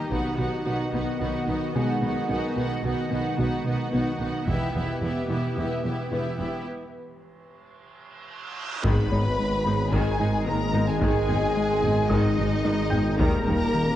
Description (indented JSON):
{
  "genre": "cinematic, hybrid orchestral and electronic film score",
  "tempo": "110 BPM",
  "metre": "4/4",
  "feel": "straight",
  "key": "G# minor",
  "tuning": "A4 = 441 Hz",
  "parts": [
    { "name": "clear symphonic violin section", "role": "second line", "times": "0.0-14.0 s", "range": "D#4 to F#5", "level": "-33 LUFS", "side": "left 1 dB", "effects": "none" },
    { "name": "rich symphonic viola section", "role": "accompaniment", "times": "0.0-13.5 s", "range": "D#3 to E4", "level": "-31 LUFS", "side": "right 1 dB", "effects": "none" },
    { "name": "warbly tape-like pad", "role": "sustained chords", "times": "0.0-14.0 s", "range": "D#3 to A#5", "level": "-31 LUFS", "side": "equal", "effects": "chorus, built-in reverb" },
    { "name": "felt-muted upright piano", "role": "texture", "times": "0.0-14.0 s", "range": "G3 to G6", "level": "-38 LUFS", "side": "left 1 dB", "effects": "none" },
    { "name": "thumb-piano-like synth pluck", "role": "arpeggios", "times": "0.1-13.6 s", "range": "D#3 to F#4", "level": "-35 LUFS", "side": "left 2 dB", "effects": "none" },
    { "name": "clear symphonic double bass section", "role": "bass", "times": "0.1-13.6 s", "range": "E1 to D#2", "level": "-32 LUFS", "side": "right 2 dB", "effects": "none" },
    { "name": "warm symphonic cello section", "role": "bass", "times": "0.1-13.6 s", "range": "E2 to D#3", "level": "-32 LUFS", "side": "right 1 dB", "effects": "none" },
    { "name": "solo taiko drums", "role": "drums", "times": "0.1-1.2, 4.5-5.5, 8.8-13.7 s", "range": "none", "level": "-31 LUFS", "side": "equal", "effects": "none" },
    { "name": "reverse cymbal and impact", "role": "sound effects", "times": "7.7-11.0 s", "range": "none", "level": "-37 LUFS", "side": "right 2 dB", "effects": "none" },
    { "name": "warm symphonic violin section", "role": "melody", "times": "8.8-14.0 s", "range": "D#5 to B5", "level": "-31 LUFS", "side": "left 3 dB", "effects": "none" },
    { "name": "bright trombone section", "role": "sustained chords", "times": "8.8-14.0 s", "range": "D#3 to G#3", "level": "-32 LUFS", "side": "right 2 dB", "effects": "none" },
    { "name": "dark French horn section", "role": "sustained chords", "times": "8.8-14.0 s", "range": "D#3 to B3", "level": "-31 LUFS", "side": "left 2 dB", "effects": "none" },
    { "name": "round analog bass", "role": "riff", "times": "8.8-13.9 s", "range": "D#2 to G#3", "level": "-29 LUFS", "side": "left 1 dB", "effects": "none" },
    { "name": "wide detuned saw bass", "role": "bass", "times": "8.8-14.0 s", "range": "D#1 to G#1", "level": "-32 LUFS", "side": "equal", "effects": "chorus" }
  ],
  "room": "moderate scoring stage reverb, RT60 1.6 s",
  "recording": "worn, warbling old tape, cassette tape, warbly pitch drift, nothing above 10.9 kHz",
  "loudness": "-22 LUFS",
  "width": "side -12 dB against mid",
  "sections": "0.0-8.8 A section; 8.8-14.0 B section",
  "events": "build-up 0.0-8.8; break 6.7-8.8; reverse cymbal 7.7-8.8; drum fill 8.0-8.8; impact 8.8-11.0",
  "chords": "0.1 B; 4.5 Em; 8.8 G#m; 13.2 D#",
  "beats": "| 0.11 0.66 1.20 1.75 | 2.29 2.84 3.38 3.93 | 4.48 5.02 5.57 6.11 | 6.66 7.20 7.75 8.29 | 8.84 9.38 9.93 10.48 | 11.02 11.57 12.11 12.66 | 13.20 13.75"
}